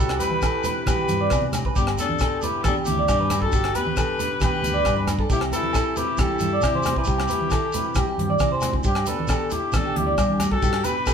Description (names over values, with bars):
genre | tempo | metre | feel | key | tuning
highlife guitar band | 135 BPM | 4/4 | straight | G major | A4 = 440 Hz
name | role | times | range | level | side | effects
warm trumpet | melody | 0.0-11.1 s | G4 to B4 | -27 LUFS | left 3 dB | none
growling alto saxophone | second line | 0.0-11.1 s | D4 to G4 | -33 LUFS | left 5 dB | none
fingerpicked steel-string acoustic guitar | accompaniment | 0.0-11.1 s | G2 to G4 | -32 LUFS | left 4 dB | none
electric guitar at the edge of break-up | arpeggios | 0.0-11.1 s | G4 to D5 | -26 LUFS | right 3 dB | spring reverb
fingered electric bass | bass | 0.0-10.8 s | G1 to G3 | -27 LUFS | equal | none
tight funk drum kit | drums | 0.1-11.1 s | hi-hat, kick drum, rim click | -26 LUFS | equal | none
agogo bells | percussion | 0.1-11.1 s | none | -34 LUFS | left 4 dB | none
congas | percussion | 0.2-11.0 s | none | -31 LUFS | right 4 dB | none
shekere | percussion | 0.2-11.1 s | none | -33 LUFS | equal | none
room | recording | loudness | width
moderate studio reverb, RT60 0.8 s | band playing live in one room | -20 LUFS | side -7 dB against mid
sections
0.0-8.9 A section; 8.9-11.1 A section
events
drum fill 8.3-8.9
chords
0.0 C; 1.8 G; 5.3 C; 8.9 G